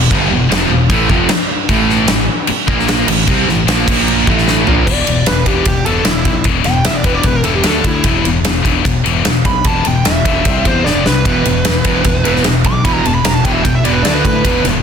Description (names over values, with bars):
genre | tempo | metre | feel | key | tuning
hard rock | 150 BPM | 4/4 | straight | E minor | A4 = 440 Hz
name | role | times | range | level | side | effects
overdriven semi-hollow guitar | riff | 0.0-4.9, 11.3-14.8 s | E2 to D4 | -18 LUFS | right 11 dB | none
scooped high-gain guitar | riff | 0.0-14.8 s | E2 to D4 | -16 LUFS | left 9 dB | distortion
fuzz fingered electric bass | bass | 0.0-14.8 s | E1 to A2 | -19 LUFS | equal | overdrive
big rock drum kit | drums | 0.1-14.7 s | crash cymbal, kick drum, ride cymbal, snare drum, toms | -15 LUFS | equal | none
bluesy overdriven lead guitar | melody | 4.9-14.6 s | E4 to D6 | -18 LUFS | right 3 dB | distortion
room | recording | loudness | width
light reverb, small room ambience | dense, heavily limited modern master | -11 LUFS | side -7 dB against mid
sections
0.0-4.9 A section; 4.9-14.8 B section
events
drum fill 4.5-4.9, 10.9-11.3; lead electric guitar solo 4.9-14.8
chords
0.0 Em; 1.7 A5; 2.7 A#5; 3.1 A5; 3.9 A#5; 4.3 A5; 4.9 E5; 7.7 D5; 8.1 E5; 10.5 C5; 10.9 F5; 11.3 E5; 14.0 D5